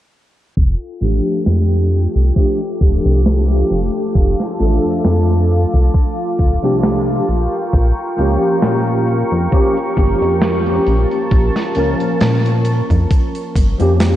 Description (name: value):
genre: vaporwave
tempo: 67 BPM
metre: 4/4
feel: swing 54% on 16ths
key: F major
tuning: A4 = 440 Hz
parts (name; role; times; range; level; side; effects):
- lush unison pad; sustained chords; 0.6-14.2 s; F4 to D6; -23 LUFS; equal; chorus, vintage 12-bit sampler grit
- chorused synth bass; bass; 0.6-14.2 s; D1 to Bb2; -15 LUFS; equal; tube saturation
- electronic kick drum; drums; 0.6-13.8 s; none; -14 LUFS; equal; overdrive, vintage 12-bit sampler grit
- tight metal drum kit; drums; 0.6-14.2 s; hi-hat, snare drum; -22 LUFS; equal; vintage 12-bit sampler grit
- tine electric piano; accompaniment; 1.0-14.2 s; F3 to Bb4; -18 LUFS; equal; ensemble chorus, tape echo
room: moderate lush hall reverb, RT60 2.5 s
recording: dreamy mix soaked in reverb, cassette tape, low-pass filter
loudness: -13 LUFS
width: side -13 dB against mid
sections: 0.6-14.2 A section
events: filter sweep 0.6-14.2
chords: 0.6 F69; 7.3 Bbm6